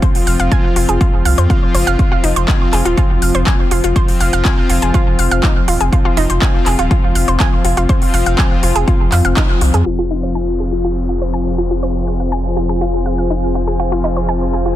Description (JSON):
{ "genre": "melodic techno", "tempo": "122 BPM", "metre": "4/4", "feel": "straight", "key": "F minor", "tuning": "A4 = 440 Hz", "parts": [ { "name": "analog pluck", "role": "arpeggios", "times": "0.0-14.7 s", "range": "Eb4 to Ab5", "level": "-20 LUFS", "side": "right 1 dB", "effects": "chorus, sidechain pumping, tape echo" }, { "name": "brassy analog pad", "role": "stabs", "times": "0.0-14.8 s", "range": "F3 to F4", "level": "-19 LUFS", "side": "left 3 dB", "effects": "chorus, sidechain pumping, tape echo" }, { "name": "electronic kick drum", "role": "drums", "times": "0.0-9.5 s", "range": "none", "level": "-14 LUFS", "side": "equal", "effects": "overdrive" }, { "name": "techno drum kit", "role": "drums", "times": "0.0-14.8 s", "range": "crash cymbal, handclaps, hi-hat", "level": "-22 LUFS", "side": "equal", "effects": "overdrive, low-pass filter on hats, low-pass filter on snare, low-pass filter on cymbals" }, { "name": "round analog bass", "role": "bass", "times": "0.3-14.8 s", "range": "Eb1 to F2", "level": "-17 LUFS", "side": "equal", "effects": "sidechain pumping" }, { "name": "evolving wavetable pad", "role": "sustained chords", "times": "10.6-14.8 s", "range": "F4 to Ab5", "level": "-24 LUFS", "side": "equal", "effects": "ensemble chorus, built-in reverb, sidechain pumping" }, { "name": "downlifter", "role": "sound effects", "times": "10.0-13.8 s", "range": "none", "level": "-35 LUFS", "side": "equal", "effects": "none" } ], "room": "digital ambience", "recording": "dense, heavily limited modern master, low-pass filter", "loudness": "-12 LUFS", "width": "side -13 dB against mid", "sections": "0.0-9.9 A section; 9.9-14.8 B section", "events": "band accent 9.4; filter sweep on synth arpeggio sound 9.9-14.8; filter sweep on ambient pad 9.9-14.8", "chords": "0.0 Fm" }